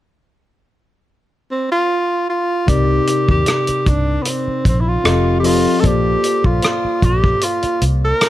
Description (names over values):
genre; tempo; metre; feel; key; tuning
lush 1970s-style soul; 76 BPM; 4/4; swing 54% on 16ths; unclear; A4 = 441 Hz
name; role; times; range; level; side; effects
breathy tenor saxophone; melody; 1.5-8.3 s; Cb4 to Bb4; -18 LUFS; right 1 dB; none
mellow tine electric piano; accompaniment; 2.7-8.3 s; C3 to Eb5; -20 LUFS; left 4 dB; phaser
vintage muted fingered electric bass; bass; 2.7-8.1 s; F1 to Eb2; -18 LUFS; equal; none
warm soul drum kit; drums; 2.7-8.3 s; hi-hat, kick drum, rim click; -18 LUFS; equal; none
room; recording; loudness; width
little or no reverb; none; -14 LUFS; side -14 dB against mid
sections
0.0-2.7 A section; 2.7-8.3 B section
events
none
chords
0.0 N.C.; 2.7 Cm9; 5.1 F7; 5.8 Bbmaj9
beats
0.31 1.10 1.89 | 2.68 3.47 4.26 5.05 | 5.84 6.63 7.42 8.21